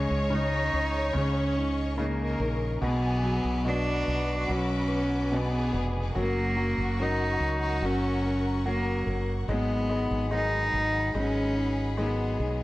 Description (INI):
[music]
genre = pop ballad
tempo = 72 BPM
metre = 4/4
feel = straight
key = F# major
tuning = A4 = 441 Hz
[part]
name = warm cello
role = melody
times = 0.0-12.6 s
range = G#3 to D#4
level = -29 LUFS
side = equal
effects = none
[part]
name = warm symphonic violin section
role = second line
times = 0.0-9.5 s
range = F#4 to C#5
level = -36 LUFS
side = left 1 dB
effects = none
[part]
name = clear concert grand piano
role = accompaniment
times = 0.0-12.6 s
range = B2 to G#3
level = -33 LUFS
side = left 1 dB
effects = none
[part]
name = clear studio string section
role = sustained chords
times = 0.0-12.6 s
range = G#4 to D6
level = -39 LUFS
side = left 1 dB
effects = none
[part]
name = flamenco guitar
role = arpeggios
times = 0.0-12.6 s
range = G#2 to B4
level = -36 LUFS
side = left 1 dB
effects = digital delay
[part]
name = mellow fretless electric bass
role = bass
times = 0.0-12.6 s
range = E#1 to C#2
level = -30 LUFS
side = equal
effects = analog chorus
[sound]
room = light reverb, small room reverb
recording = worn, warbling old tape, cassette tape, warbly pitch drift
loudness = -25 LUFS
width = side -17 dB against mid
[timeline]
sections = 0.0-12.6 A section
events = none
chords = 0.0 C#sus2; 2.8 Bm; 6.2 F#; 9.5 G#m7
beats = 0.32 1.15 1.98 | 2.82 3.65 4.48 5.32 | 6.15 6.98 7.82 8.65 | 9.48 10.32 11.15 11.98